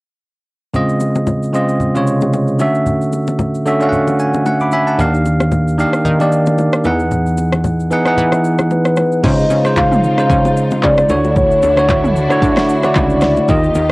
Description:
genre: amapiano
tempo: 113 BPM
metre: 4/4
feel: swing 55% on 16ths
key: unclear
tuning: A4 = 440 Hz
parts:
  - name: bell-like tine electric piano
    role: accompaniment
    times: 0.7-13.9 s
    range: C3 to D6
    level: -14 LUFS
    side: right 1 dB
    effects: none
  - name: deep house drum kit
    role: drums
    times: 0.7-13.9 s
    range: crash cymbal, handclaps, kick drum, rim click, shaker, snare drum, toms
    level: -19 LUFS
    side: equal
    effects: overdrive, cassette tape
  - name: congas and bongos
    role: percussion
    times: 0.7-13.9 s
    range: none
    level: -22 LUFS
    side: left 2 dB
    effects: none
  - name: plucky analog bass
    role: bass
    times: 5.0-13.9 s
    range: C#2 to E3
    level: -18 LUFS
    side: equal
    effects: none
  - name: hollow clarinet-like synth lead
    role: melody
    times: 8.7-13.9 s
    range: B4 to F5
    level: -16 LUFS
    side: left 1 dB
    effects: chorus, cassette tape, analog delay
  - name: warm studio string section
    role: sustained chords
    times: 9.2-13.9 s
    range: Db3 to G4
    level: -23 LUFS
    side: left 1 dB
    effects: sidechain pumping
room: moderate booth ambience, RT60 0.2 s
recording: home recording on cassette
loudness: -12 LUFS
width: side -23 dB against mid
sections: 0.7-9.2 A section; 9.2-13.9 B section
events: tine electric piano fill 3.9-5.0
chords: 0.7 Dbmaj9; 2.6 Dmaj9; 5.0 Ebmaj9; 6.8 Emaj9; 9.2 Dbmaj9; 11.1 Dmaj9

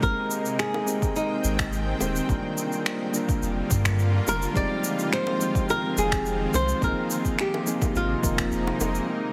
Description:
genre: sunset chillout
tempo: 106 BPM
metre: 4/4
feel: straight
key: unclear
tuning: A4 = 440 Hz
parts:
  - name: flamenco guitar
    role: melody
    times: 0.0-8.8 s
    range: Eb4 to D5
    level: -30 LUFS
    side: equal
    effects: delay
  - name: soft electric-piano-like synth keys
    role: accompaniment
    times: 0.0-9.3 s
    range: F3 to G5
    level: -31 LUFS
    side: equal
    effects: chorus
  - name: shimmering ambient pad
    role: sustained chords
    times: 0.0-9.3 s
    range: C3 to G5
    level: -34 LUFS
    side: equal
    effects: chorus, built-in reverb
  - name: warm sub bass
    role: bass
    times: 0.0-9.0 s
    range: Eb1 to G2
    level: -30 LUFS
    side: equal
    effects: none
  - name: electronic kick drum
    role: drums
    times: 0.0-8.5 s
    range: none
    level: -30 LUFS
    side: equal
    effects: none
  - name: electronic shaker and finger snaps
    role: drums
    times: 0.0-9.2 s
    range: none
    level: -33 LUFS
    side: equal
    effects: low-pass filter on perc, low-pass filter on snare, low-pass filter on room
  - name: bongos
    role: percussion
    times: 0.7-8.9 s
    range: none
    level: -38 LUFS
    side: equal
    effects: none
room: moderate scoring stage reverb, RT60 1.5 s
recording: heavily compressed radio sound, multiband compression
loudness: -25 LUFS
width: mono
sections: 0.0-9.1 A section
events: none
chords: 0.0 Abmaj7; 2.3 Gm7; 4.6 Fm7; 6.8 Bb9sus4

